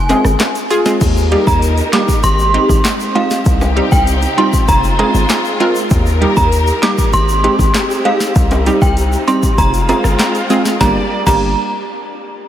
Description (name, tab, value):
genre	dancehall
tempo	98 BPM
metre	4/4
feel	straight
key	G phrygian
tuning	A4 = 445 Hz
part	synth chime	melody	0.0-11.6 s	F5 to D6	-18 LUFS	right 1 dB	ensemble chorus, analog delay
part	hard-hitting 808-style bass	bass	0.0-11.6 s	F1 to Eb2	-15 LUFS	equal	none
part	analog pluck	accompaniment	0.1-11.6 s	G3 to Bb4	-17 LUFS	right 1 dB	chorus
part	afro-pop drum kit	drums	0.1-11.4 s	crash cymbal, handclaps, hi-hat, kick drum, rim click, snare drum	-17 LUFS	equal	none
part	timbales and egg shaker	percussion	0.1-11.6 s	none	-26 LUFS	left 1 dB	none
part	warm studio string section	sustained chords	1.0-11.1 s	C3 to D5	-20 LUFS	left 1 dB	sidechain pumping
room	moderate huge ambient reverb, RT60 4.6 s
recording	dreamy mix soaked in reverb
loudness	-11 LUFS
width	side -11 dB against mid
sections	0.0-1.0 A section; 1.0-10.8 B section; 10.8-12.5 C section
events	none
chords	0.0 Fm; 1.0 Eb; 2.2 Abmaj7; 3.5 Cm; 4.7 Fm; 5.9 Eb; 7.1 Abmaj7; 8.4 Cm; 9.6 Fm; 10.8 Gm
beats	0.40 | 1.01 1.62 2.24 2.85 | 3.46 4.07 4.68 5.30 | 5.91 6.52 7.13 7.75 | 8.36 8.97 9.58 10.20 | 10.81 11.42